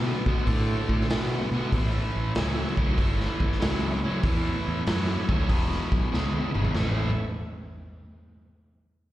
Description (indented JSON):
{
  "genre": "blues rock power trio and southern rock",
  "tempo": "95 BPM",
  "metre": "4/4",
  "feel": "swing 67% on 8ths",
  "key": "A major",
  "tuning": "A4 = 439 Hz",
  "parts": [
    { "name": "bright tonewheel organ", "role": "sustained chords", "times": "0.0-7.3 s", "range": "G#3 to D5", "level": "-38 LUFS", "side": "right 3 dB", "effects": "chorus vibrato, slow rotary speaker, plate reverb" },
    { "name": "biting overdriven guitar", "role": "riff", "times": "0.0-7.1 s", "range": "E2 to B3", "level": "-30 LUFS", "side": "equal", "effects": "slapback echo" },
    { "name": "fuzz fingered electric bass", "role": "bass", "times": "0.0-7.2 s", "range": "E1 to B2", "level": "-28 LUFS", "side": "equal", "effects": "overdrive" },
    { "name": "raw garage drum kit", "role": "drums", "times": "0.3-7.0 s", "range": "hi-hat, kick drum, snare drum, toms", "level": "-27 LUFS", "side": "equal", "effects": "none" }
  ],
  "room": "little or no reverb",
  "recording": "live gig heard through the venue's PA, recital hall reverb",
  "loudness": "-23 LUFS",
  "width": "side -14 dB against mid",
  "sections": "0.0-6.8 A section; 6.8-9.1 B section",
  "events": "drum fill 6.1-6.8",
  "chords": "0.0 D; 1.7 A; 5.5 E; 6.8 A"
}